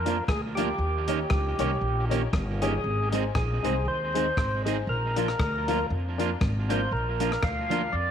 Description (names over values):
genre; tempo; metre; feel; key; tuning
ska; 118 BPM; 4/4; swing 56% on 8ths; unclear; A4 = 440 Hz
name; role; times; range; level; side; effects
percussive tonewheel organ; melody; 0.0-8.1 s; G4 to F5; -30 LUFS; equal; slow rotary speaker
upright bass; bass; 0.0-8.1 s; G1 to F2; -29 LUFS; equal; tube saturation
electric guitar at the edge of break-up; accompaniment; 0.1-7.8 s; Eb3 to Ab4; -32 LUFS; right 9 dB; tape echo
honky-tonk upright piano; stabs; 0.1-7.9 s; D4 to Db5; -33 LUFS; left 11 dB; none
compact cocktail drum kit; drums; 0.1-7.8 s; hi-hat, kick drum, rim click; -30 LUFS; left 1 dB; none
room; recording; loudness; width
light reverb, small room reverb; 1960s-style stereo with parts hard left and right, vinyl crackle; -24 LUFS; side -8 dB against mid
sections
0.0-8.1 A section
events
none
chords
0.0 Bb; 0.8 Eb7; 2.8 Ab; 4.9 Bb